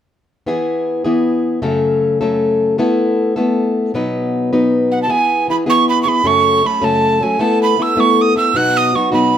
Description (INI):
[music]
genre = celtic folk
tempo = 104 BPM (dotted quarters)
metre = 6/8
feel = straight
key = E major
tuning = A4 = 441 Hz
[part]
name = fingerpicked plugged-in steel-string acoustic guitar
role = accompaniment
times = 0.5-9.4 s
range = F#2 to B4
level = -14 LUFS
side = left 2 dB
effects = none
[part]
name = breathy bright mid whistle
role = melody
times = 4.9-9.4 s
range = F#5 to F#6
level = -14 LUFS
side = right 5 dB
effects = none
[sound]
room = wet small room ambience, RT60 0.5 s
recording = none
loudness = -13 LUFS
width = side -9 dB against mid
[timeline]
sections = 0.5-5.1 A section; 5.1-9.4 B section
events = none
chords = 0.5 E; 1.6 F#m; 2.8 Asus2; 3.9 B; 5.1 E; 6.2 F#m; 7.4 Asus2; 8.5 B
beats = | 0.46 1.04 | 1.62 2.20 | 2.78 3.36 | 3.94 4.51 | 5.09 5.67 | 6.24 6.82 | 7.39 7.97 | 8.54 9.12